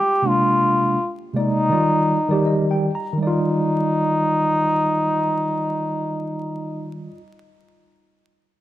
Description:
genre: hip hop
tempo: 81 BPM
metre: 4/4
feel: swing 58% on 16ths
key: Eb major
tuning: A4 = 439 Hz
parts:
  - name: trombone with metal mute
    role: melody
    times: 0.0-6.9 s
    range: Eb4 to G4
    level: -20 LUFS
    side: left 1 dB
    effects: none
  - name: tine electric piano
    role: accompaniment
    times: 0.2-7.2 s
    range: C3 to Bb5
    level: -22 LUFS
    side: equal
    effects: medium stereo tremolo
room: moderate plate reverb, RT60 2.8 s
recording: vinyl crackle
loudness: -18 LUFS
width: side -14 dB against mid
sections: 0.0-3.2 A section; 3.2-6.2 B section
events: tine electric piano fill 2.1-3.2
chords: 0.2 Bb9; 1.7 Ebmaj9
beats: | 0.23 0.97 1.71 2.45 | 3.19 3.93 4.67 5.42

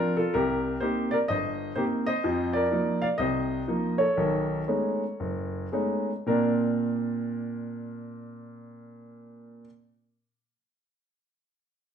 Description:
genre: solo jazz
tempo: 108-127 BPM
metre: 4/4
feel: swing 66% on 8ths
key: Bb major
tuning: A4 = 440 Hz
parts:
  - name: warm baby grand piano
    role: solo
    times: 0.0-9.7 s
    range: F#1 to F5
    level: -26 LUFS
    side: equal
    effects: none
room: wet large studio reverb, RT60 0.9 s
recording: band playing live in one room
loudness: -25 LUFS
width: side -8 dB against mid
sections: 0.0-6.3 A section; 6.3-10.7 B section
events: slowing down 2.2-6.3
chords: 0.3 Cm7; 2.2 F7sus4; 4.2 B13; 6.3 Bbadd9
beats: | 0.33 0.81 1.28 1.76 | 2.23 2.71 3.18 3.67 | 4.16 4.67 5.18 5.71 | 6.26 6.82 7.37 7.93 | 8.49 9.04 9.60

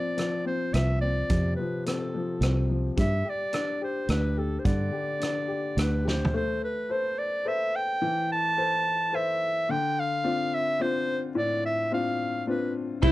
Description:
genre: acoustic folk-pop ballad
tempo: 107 BPM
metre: 3/4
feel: straight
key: A minor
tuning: A4 = 440 Hz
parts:
  - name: clear clarinet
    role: melody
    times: 0.0-13.1 s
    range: A4 to A5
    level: -28 LUFS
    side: equal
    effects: none
  - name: warm upright piano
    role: accompaniment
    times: 0.0-13.1 s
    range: A2 to C5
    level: -30 LUFS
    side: left 3 dB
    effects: none
  - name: loose indie drum kit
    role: drums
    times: 0.2-6.4, 13.0-13.1 s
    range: hi-hat, kick drum, ride cymbal, rim click, snare drum, toms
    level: -30 LUFS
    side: right 1 dB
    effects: none
  - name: fingered electric bass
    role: bass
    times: 0.7-6.3, 13.0-13.1 s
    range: C2 to G2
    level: -25 LUFS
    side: right 1 dB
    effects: none
  - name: rich violin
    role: second line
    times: 13.0-13.1 s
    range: E4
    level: -26 LUFS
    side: left 5 dB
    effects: none
  - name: vibraphone with medium mallets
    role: arpeggios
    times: 13.0-13.1 s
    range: E4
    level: -23 LUFS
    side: right 4 dB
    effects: none
room: moderate studio reverb, RT60 0.5 s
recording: dark, warm production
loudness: -25 LUFS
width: side -16 dB against mid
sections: 0.0-6.3 A section; 6.3-13.1 B section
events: drum fill 6.1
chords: 0.0 F; 3.0 G5; 6.3 Amadd9; 9.7 Dm7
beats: 0.18 0.74 | 1.30 1.86 2.42 | 2.98 3.54 4.10 | 4.66 5.22 5.78 | 6.34 6.90 7.46 | 8.02 8.57 9.13 | 9.69 10.24 10.80 | 11.35 11.91 12.47 | 13.03

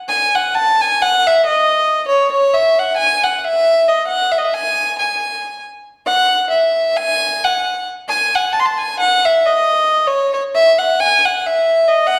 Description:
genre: balkan folk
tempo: free time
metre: none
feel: none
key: unclear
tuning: A4 = 440 Hz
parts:
  - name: warm violin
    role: solo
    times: 0.1-12.2 s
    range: C#5 to B#5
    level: -15 LUFS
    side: equal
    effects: none
room: wet recital hall reverb, RT60 1.3 s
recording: heard from further back in the room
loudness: -15 LUFS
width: mono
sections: 0.0-12.2 A section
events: none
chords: none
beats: free time

